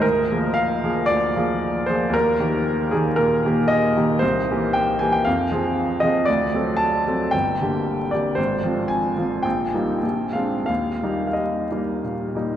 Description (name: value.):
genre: classical, romantic character piece for solo piano.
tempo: 88-121 BPM.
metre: 4/4.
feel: rubato.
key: Eb major.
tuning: A4 = 440 Hz.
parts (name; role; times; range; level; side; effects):
clear baby grand piano; solo; 0.0-12.6 s; G1 to A5; -19 LUFS; equal; none.
room: wet cathedral reverb, RT60 6.5 s.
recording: in a vast, echoing space, vinyl crackle.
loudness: -19 LUFS.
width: side -10 dB against mid.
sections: 0.0-12.6 A section.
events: none.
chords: 0.0 Bb7/D; 2.1 Eb; 4.2 C7; 5.3 Fm; 6.3 D7; 7.3 Gm; 8.4 Fm/Ab; 9.4 Eb/Bb; 10.0 Bb9; 10.7 Eb.